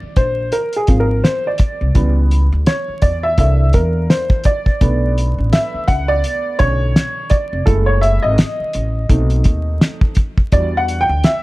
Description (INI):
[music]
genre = hip hop, jazz-hop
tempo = 84 BPM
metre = 4/4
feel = swing 58% on 16ths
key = unclear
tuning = A4 = 440 Hz
[part]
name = warm upright piano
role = accompaniment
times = 0.0-11.4 s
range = D3 to G5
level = -18 LUFS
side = right 1 dB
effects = none
[part]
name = upright bass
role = bass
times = 0.0-11.2 s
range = E#1 to E2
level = -16 LUFS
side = equal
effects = none
[part]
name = cloth-damped thuddy drum kit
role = drums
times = 0.2-11.4 s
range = hi-hat, kick drum, snare drum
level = -14 LUFS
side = equal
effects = none
[sound]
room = studio reverb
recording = dark, warm production, vinyl crackle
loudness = -13 LUFS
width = side -19 dB against mid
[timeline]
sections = 0.0-11.4 A section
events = upright piano solo 0.0-11.4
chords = 0.0 G#6; 2.0 C#m7b5; 3.4 C13; 4.8 Bm7; 7.7 F#m9; 9.1 B7b9; 10.5 Em9